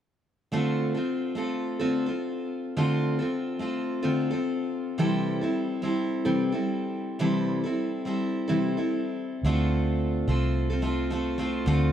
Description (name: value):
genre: pop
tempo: 108 BPM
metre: 4/4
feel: swing 55% on 16ths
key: D minor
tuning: A4 = 440 Hz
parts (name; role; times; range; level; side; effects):
- picked steel-string acoustic guitar; accompaniment; 0.5-11.9 s; C3 to A4; -25 LUFS; equal; none
- vintage muted fingered electric bass; bass; 9.4-11.9 s; C2 to D2; -27 LUFS; equal; none
room: moderate plate reverb, RT60 3.2 s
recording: dark, warm production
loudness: -25 LUFS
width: side -10 dB against mid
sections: 0.5-9.4 A section; 9.4-11.9 B section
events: none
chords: 0.5 Dm7; 5.0 C6; 9.4 Dm7